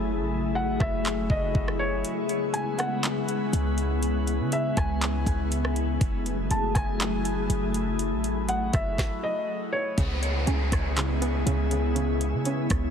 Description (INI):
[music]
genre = hip hop, atmospheric cloud-rap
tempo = 121 BPM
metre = 4/4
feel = half-time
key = C# minor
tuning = A4 = 440 Hz
[part]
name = glassy FM pad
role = sustained chords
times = 0.0-12.9 s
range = C#3 to G#4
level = -29 LUFS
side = left 2 dB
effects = ensemble chorus, built-in reverb, sidechain pumping
[part]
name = warm 808-style bass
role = bass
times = 0.0-12.9 s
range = F#1 to C#3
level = -28 LUFS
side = equal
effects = none
[part]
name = drifting glass-harmonics texture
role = texture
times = 0.0-12.9 s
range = A3 to E5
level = -38 LUFS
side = left 1 dB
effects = chorus, built-in reverb
[part]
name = felt-muted upright piano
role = melody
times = 0.6-10.0 s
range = C#5 to A5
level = -32 LUFS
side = equal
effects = low-pass filter, digital delay
[part]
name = smooth R&B drum kit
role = drums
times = 0.8-12.8 s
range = handclaps, hi-hat, kick drum, rim click, snare drum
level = -29 LUFS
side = equal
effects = none
[part]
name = string-like resonator pluck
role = arpeggios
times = 10.0-12.9 s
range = C#3 to C#4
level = -34 LUFS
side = right 5 dB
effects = chorus, low-pass filter, digital delay
[part]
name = downlifter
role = sound effects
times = 10.0-12.9 s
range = none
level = -35 LUFS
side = right 1 dB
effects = none
[sound]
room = light reverb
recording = heavily compressed radio sound, lossy compression artefacts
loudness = -24 LUFS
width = side -7 dB against mid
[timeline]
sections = 0.0-10.0 A section; 10.0-12.9 B section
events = break 0.0-2.0; kick muted 2.0-3.0; stop 9.0-10.0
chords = 0.0 F#m9; 2.0 C#m7; 6.0 F#m9; 10.0 C#m7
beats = | 0.06 0.56 1.05 1.55 | 2.04 2.54 3.03 3.53 | 4.03 4.52 5.02 5.51 | 6.01 6.51 7.00 7.50 | 7.99 8.49 8.98 9.48 | 9.98 10.47 10.97 11.46 | 11.96 12.46